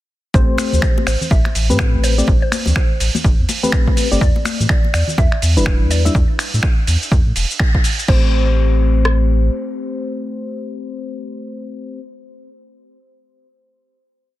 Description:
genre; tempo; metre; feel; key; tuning
deep house; 124 BPM; 4/4; swing 60% on 16ths; A minor; A4 = 440 Hz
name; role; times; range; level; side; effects
mallet-like synth pluck; melody; 0.3-12.0 s; C5 to E5; -28 LUFS; right 1 dB; chorus, ping-pong delay
mellow FM electric piano; stabs; 0.3-12.0 s; G3 to E5; -22 LUFS; left 3 dB; chorus, cassette tape, sidechain pumping, dub echo
warm sub bass; bass; 0.3-9.5 s; E1 to A2; -16 LUFS; equal; tube saturation, sidechain pumping
dusty soul sampler-style drum kit; drums; 0.3-8.2 s; cabasa, crash cymbal, finger snaps, hi-hat; -22 LUFS; right 1 dB; overdrive, small room ambience, soft clipping on snare
punchy analog drum machine; drums; 0.3-9.2 s; kick drum, rim click; -15 LUFS; equal; small room ambience
congas; percussion; 0.6-6.1 s; none; -26 LUFS; left 2 dB; none
room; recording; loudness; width
digital ambience; dense, heavily limited modern master; -13 LUFS; side -15 dB against mid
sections
0.3-8.1 drop; 8.1-12.0 final chord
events
drop 0.3-8.1; band accent 7.6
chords
0.3 Am9; 4.2 Em7; 8.1 Am7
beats
| 0.34 0.83 1.31 1.79 | 2.28 2.76 3.25 3.73 | 4.21 4.70 5.18 5.66 | 6.15 6.63 7.12 7.60 | 8.08 8.57 9.05 9.54 | 10.02 10.50 10.99 11.47

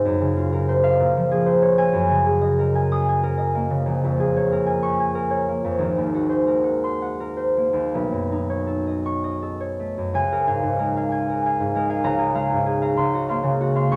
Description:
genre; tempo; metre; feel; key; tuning
classical, solo harp piece; 53-65 BPM (dotted quarters); 6/8; rubato; Db major; A4 = 435 Hz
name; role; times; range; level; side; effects
concert harp; solo; 0.0-14.0 s; Ab1 to Eb6; -22 LUFS; equal; none
room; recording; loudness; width
moderate stone room reverb, RT60 1.0 s; none; -22 LUFS; mono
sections
0.0-10.2 A section; 10.2-14.0 B section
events
none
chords
0.0 Gbmaj7#11; 1.0 Bbm9; 1.9 Gb69; 3.9 Bbm7; 5.8 Ab9; 7.9 Cb9; 10.2 Db6; 13.0 Gbmaj7#11/Db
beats
| 0.03 0.99 | 1.94 2.90 | 3.86 4.83 | 5.81 6.83 | 7.94 9.06 | 10.16 11.13 | 12.06 12.99 | 13.94

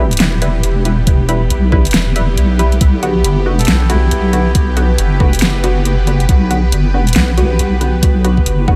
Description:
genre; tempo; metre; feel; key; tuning
deep dubstep; 138 BPM; 4/4; swing 60% on 16ths, half-time; unclear; A4 = 441 Hz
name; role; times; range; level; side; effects
bowed-like drone; sustained chords; 0.0-8.8 s; E3 to B4; -24 LUFS; equal; built-in reverb, phaser, vintage 12-bit sampler grit
filtered dub chord stab; stabs; 0.0-8.8 s; D3 to B4; -23 LUFS; equal; analog chorus, dub echo
deep soft wobble bass; bass; 0.0-8.8 s; E1 to B1; -16 LUFS; equal; chorus
dubstep drum kit; drums; 0.1-8.6 s; hi-hat, snare drum; -21 LUFS; equal; overdrive
electronic kick drum; drums; 1.1-8.8 s; none; -14 LUFS; equal; overdrive
melodica; melody; 3.6-4.5 s; E4 to A4; -32 LUFS; equal; none
room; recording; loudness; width
light reverb; none; -13 LUFS; mono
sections
0.0-8.8 A section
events
none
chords
0.0 Em; 2.8 Bm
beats
0.20 0.64 | 1.07 1.51 1.94 2.38 | 2.81 3.25 3.68 4.11 | 4.55 4.98 5.42 5.85 | 6.29 6.72 7.16 7.59 | 8.03 8.46

